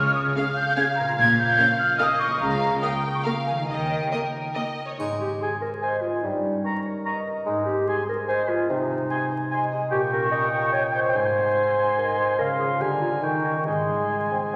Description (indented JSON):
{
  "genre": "cinematic, playful, whimsical film cue",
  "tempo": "145 BPM",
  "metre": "3/4",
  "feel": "straight",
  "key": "Ab major",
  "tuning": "A4 = 440 Hz",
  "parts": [
    { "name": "large flute ensemble", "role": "second line", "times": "0.0-14.6 s", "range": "G5 to Ab6", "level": "-28 LUFS", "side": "equal", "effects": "none" },
    { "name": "rich chamber violin section", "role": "second line", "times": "0.0-5.0 s", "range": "Bb4 to G5", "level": "-32 LUFS", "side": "equal", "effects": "none" },
    { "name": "concert harp", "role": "arpeggios", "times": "0.0-14.6 s", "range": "G2 to Eb5", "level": "-33 LUFS", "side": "equal", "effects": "none" },
    { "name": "rich chamber cello section", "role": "bass", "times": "0.0-4.0 s", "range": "Bb2 to Eb3", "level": "-33 LUFS", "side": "equal", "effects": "none" },
    { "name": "warm symphonic double bass section", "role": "bass", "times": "0.0-4.0 s", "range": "Bb1 to Eb2", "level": "-37 LUFS", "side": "equal", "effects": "none" },
    { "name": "rich chamber violin section", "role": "melody", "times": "0.4-4.6 s", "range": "Eb5 to F5", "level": "-39 LUFS", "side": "equal", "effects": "none" },
    { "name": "dark studio viola section", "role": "accompaniment", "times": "0.4-4.6 s", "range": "Bb3 to Bb4", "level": "-36 LUFS", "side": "equal", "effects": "none" },
    { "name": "dark clarinet", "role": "second line", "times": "5.0-14.6 s", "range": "Eb4 to Eb5", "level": "-28 LUFS", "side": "equal", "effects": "none" },
    { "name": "mellow bassoon", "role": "accompaniment", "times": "5.0-14.6 s", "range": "Ab2 to C4", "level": "-33 LUFS", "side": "equal", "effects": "none" },
    { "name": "triangle", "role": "percussion", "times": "5.0-5.8 s", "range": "none", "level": "-53 LUFS", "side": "equal", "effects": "none" },
    { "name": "clear oboe", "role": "second line", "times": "5.4-14.6 s", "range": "F5 to Bb5", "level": "-30 LUFS", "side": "equal", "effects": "none" }
  ],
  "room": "wet scoring stage reverb, RT60 2.1 s",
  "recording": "vinyl crackle",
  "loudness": "-24 LUFS",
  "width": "mono",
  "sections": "0.0-5.0 A section; 5.0-14.6 B section",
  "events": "none",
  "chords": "0.0 Db; 1.2 Bbm7; 2.4 Bbm/Db; 3.7 Eb; 5.0 Ab; 6.2 Eb7/G; 7.5 Ab; 8.7 Ab/C; 9.9 Eb7/Bb; 11.1 Ab; 12.4 Dbmaj7; 12.8 Bb7/D; 13.2 Eb7; 13.7 Ab"
}